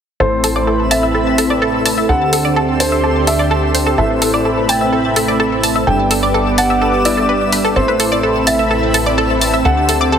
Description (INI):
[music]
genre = progressive house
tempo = 127 BPM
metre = 4/4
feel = straight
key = A minor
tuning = A4 = 440 Hz
[part]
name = dark grand piano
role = melody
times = 0.2-10.2 s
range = C5 to G5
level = -19 LUFS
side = equal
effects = ping-pong delay
[part]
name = lush unison pad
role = sustained chords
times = 0.2-10.2 s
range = C4 to D6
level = -20 LUFS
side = equal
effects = chorus, phaser
[part]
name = analog pluck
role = arpeggios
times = 0.2-10.2 s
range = E4 to A5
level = -18 LUFS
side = equal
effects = analog chorus, ping-pong delay
[part]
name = soft supersaw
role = stabs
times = 0.2-10.2 s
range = G2 to D5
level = -17 LUFS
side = right 1 dB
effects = lush chorus, low-pass filter, ping-pong delay
[part]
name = tight sequencer bass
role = bass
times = 0.2-10.2 s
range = G1 to D2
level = -22 LUFS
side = equal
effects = none
[part]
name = twinkling granular texture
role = texture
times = 0.8-10.2 s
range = E5 to E6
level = -27 LUFS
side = left 1 dB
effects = built-in reverb
[part]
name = electronic hi-hat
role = drums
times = 0.4-10.0 s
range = none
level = -20 LUFS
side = equal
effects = none
[sound]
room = moderate lush hall reverb, RT60 2.1 s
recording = heavily compressed radio sound, multiband compression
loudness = -12 LUFS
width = side -8 dB against mid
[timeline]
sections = 0.2-10.2 A section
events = none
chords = 0.2 Amadd9; 2.1 D7sus4; 4.0 Amadd9; 5.9 G; 7.8 Amadd9; 9.7 D7sus4